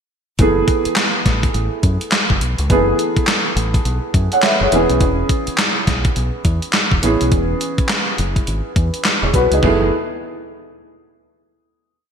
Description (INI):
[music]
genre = R&B, new jack swing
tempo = 104 BPM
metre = 4/4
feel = swing 61% on 16ths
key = F# minor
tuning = A4 = 440 Hz
[part]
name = warm grand piano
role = accompaniment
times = 0.4-9.9 s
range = E3 to F#5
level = -19 LUFS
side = right 1 dB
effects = wide subtle chorus
[part]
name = deep dub fingered electric bass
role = bass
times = 0.4-9.9 s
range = E1 to F#2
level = -19 LUFS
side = equal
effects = none
[part]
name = gated 80s digital drum machine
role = drums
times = 0.4-9.8 s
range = handclaps, hi-hat, kick drum, snare drum, toms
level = -17 LUFS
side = equal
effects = gated reverb, gated reverb snare
[sound]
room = moderate lush hall reverb, RT60 1.9 s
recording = bright 1980s-style digital production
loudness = -14 LUFS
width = side -7 dB against mid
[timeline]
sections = 0.4-9.6 verse; 9.6-11.9 final chord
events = none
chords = 0.4 F#m11; 4.7 E6; 9.6 F#m11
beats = | 0.40 0.97 1.55 2.12 | 2.70 3.28 3.86 4.43 | 5.01 5.59 6.16 6.74 | 7.32 7.89 8.47 9.05 | 9.62